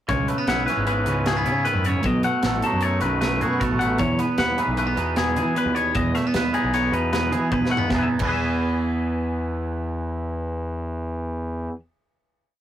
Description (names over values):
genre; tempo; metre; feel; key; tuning
math rock and midwest emo; 153 BPM; 5/4; straight; E major; A4 = 440 Hz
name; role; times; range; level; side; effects
twangy electric guitar; accompaniment; 0.1-11.8 s; E2 to B4; -24 LUFS; right 3 dB; none
twangy electric guitar; arpeggios; 0.1-11.8 s; G#4 to F#5; -26 LUFS; left 5 dB; none
fuzz picked electric bass; bass; 0.1-11.7 s; G#1 to E3; -26 LUFS; left 1 dB; overdrive
crisp fusion drum kit; drums; 0.1-8.3 s; crash cymbal, hi-hat, kick drum, snare drum, toms; -28 LUFS; equal; none
room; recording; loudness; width
moderate booth ambience, RT60 0.2 s; rough rehearsal-room recording, warm saturation; -20 LUFS; side -11 dB against mid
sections
0.1-7.9 A section; 7.9-11.8 final chord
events
drum fill 7.5-7.9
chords
0.1 C#m7; 2.0 B7; 4.0 Emaj7; 7.9 E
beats
| 0.09 0.48 0.87 1.26 1.66 | 2.05 2.44 2.83 3.22 3.61 | 4.00 4.39 4.78 5.17 5.56 | 5.95 6.34 6.73 7.12 7.51 | 7.90 8.29 8.69 9.08 9.47 | 9.87 10.26 10.65 11.05 11.44